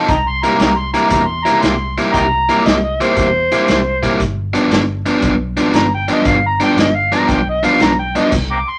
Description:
electric blues shuffle; 117 BPM; 4/4; swing 67% on 8ths; A4 = 440 Hz
overdriven electric guitar; riff; 0.0-8.3 s; G2 to E4; -18 LUFS; equal
overdriven harmonica; second line; 0.1-8.8 s; C5 to D6; -18 LUFS; equal
vintage muted fingered electric bass; bass; 0.1-8.6 s; G1 to E2; -26 LUFS; equal
vintage drum kit; drums; 0.1-8.5 s; crash cymbal, hi-hat, kick drum, snare drum; -22 LUFS; equal
wet small room reverb, RT60 0.5 s; faint mains hum; -15 LUFS; mono
0.0-8.8 A section
harmonica solo 0.0-8.8; stop 8.3-8.8
0.1 C7; 4.2 G7

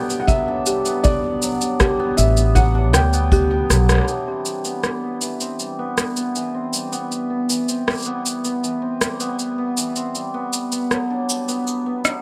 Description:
folktronica; 79 BPM; 4/4; straight; A4 = 437 Hz
felt-muted upright piano; melody; 0.0-3.7 s; D5 to G5; -26 LUFS; equal; delay
cimbalom; arpeggios; 0.0-12.2 s; E3 to D4; -26 LUFS; equal; low-pass filter, delay
electronic cabasa and rim click; drums; 0.1-12.2 s; -24 LUFS; equal
kick drum; drums; 0.3-3.5 s; -23 LUFS; equal
kalimba; second line; 0.7-3.7 s; G4; -28 LUFS; equal; delay
upright bass; bass; 2.2-4.0 s; A1 to D2; -19 LUFS; equal
light reverb, small room ambience; -20 LUFS; mono
0.0-4.1 A section; 4.1-12.2 B section
drum fill 3.7-4.1
0.0 Gmaj7; 4.1 Cmaj7; 10.2 Gmaj7

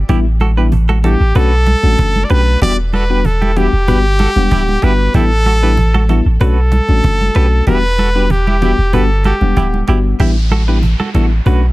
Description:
afrobeats; 95 BPM; 4/4; straight; E dorian; A4 = 441 Hz
punchy sub bass; bass; 0.0-11.7 s; D1 to B1; -12 LUFS; equal
mellow FM electric piano; accompaniment; 0.1-11.6 s; G3 to F#5; -19 LUFS; left 4 dB; chorus
direct-recorded clean electric guitar; riff; 0.1-11.7 s; E4 to B4; -23 LUFS; right 5 dB; tremolo, digital delay
cajon; drums; 0.1-11.7 s; -22 LUFS; equal
congas; percussion; 0.1-11.3 s; -21 LUFS; right 2 dB
bright trumpet; melody; 1.0-9.8 s; G4 to D5; -17 LUFS; equal; digital delay
downlifter; sound effects; 10.2-11.7 s; -27 LUFS; equal
studio ambience; -10 LUFS; side -18 dB against mid
0.0-10.2 A section; 10.2-11.7 B section
0.1 A7sus4; 1.4 Bm7; 2.6 Em7; 5.1 A7sus4; 6.4 Bm7; 7.7 Em7; 10.2 A7sus4

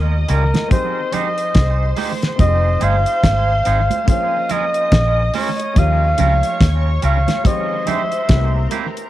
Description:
lovers rock reggae; 71 BPM; 4/4; swing 60% on 16ths; F minor; A4 = 435 Hz
warm flugelhorn; melody; 0.0-8.7 s; Bb4 to F5; -20 LUFS; equal; cassette tape, tape echo, plate reverb
soft string machine; second line; 0.0-9.1 s; Bb4 to Eb6; -28 LUFS; equal; ensemble chorus, analog delay, plate reverb
clear grand piano; accompaniment; 0.0-9.1 s; Eb3 to Eb5; -30 LUFS; left 11 dB; analog delay, plate reverb
vintage muted fingered electric bass; bass; 0.0-8.7 s; F1 to Eb2; -16 LUFS; equal
twangy electric guitar; stabs; 0.1-8.9 s; G3 to C5; -27 LUFS; right 8 dB; analog delay, plate reverb
damped 70s drum kit; drums; 0.3-9.1 s; hi-hat, kick drum, snare drum; -17 LUFS; equal; analog delay
congas; percussion; 0.5-8.9 s; -27 LUFS; right 10 dB
light reverb; home recording on cassette; -14 LUFS; side -14 dB against mid
0.0-9.1 A section
0.0 Eb9; 0.7 Abmaj7; 2.4 Fm7; 4.1 Bbm7; 5.8 Eb9; 7.5 Abmaj7; 8.3 C7

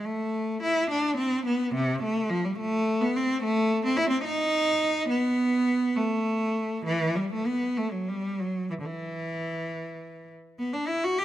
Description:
classical, baroque-style suite movement for unaccompanied cello; 62-73 BPM (dotted quarters); 6/8; rubato; A minor, E minor from 3.4 s; A4 = 440 Hz
warm cello; solo; 0.0-11.2 s; C3 to G4; -25 LUFS; equal
light reverb; close, detailed microphones; -25 LUFS; side -13 dB against mid
0.0-10.6 A section

